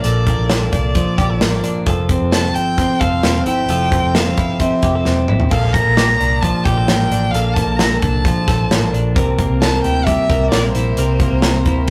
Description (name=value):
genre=jangly indie pop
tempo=132 BPM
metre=4/4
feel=straight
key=F major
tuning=A4 = 438 Hz
part: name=rich violin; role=melody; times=0.0-11.9 s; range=C5 to Bb5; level=-23 LUFS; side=equal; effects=none
part: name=twelve-string electric guitar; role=arpeggios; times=0.0-11.9 s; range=Bb2 to Bb4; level=-21 LUFS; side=equal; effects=spring reverb
part: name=vintage muted fingered electric bass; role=bass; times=0.0-11.8 s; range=E1 to D2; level=-22 LUFS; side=equal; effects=none
part: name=modern studio drum kit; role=drums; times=0.0-11.9 s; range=crash cymbal, hi-hat, kick drum, snare drum, toms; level=-21 LUFS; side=equal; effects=none
room=moderate studio reverb, RT60 0.6 s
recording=rough rehearsal-room recording, tube saturation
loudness=-16 LUFS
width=mono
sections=0.0-11.9 A section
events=drum fill 5.1-5.5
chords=0.0 Bbmaj7; 1.9 Fmaj7; 5.5 Bbmaj7; 9.2 C7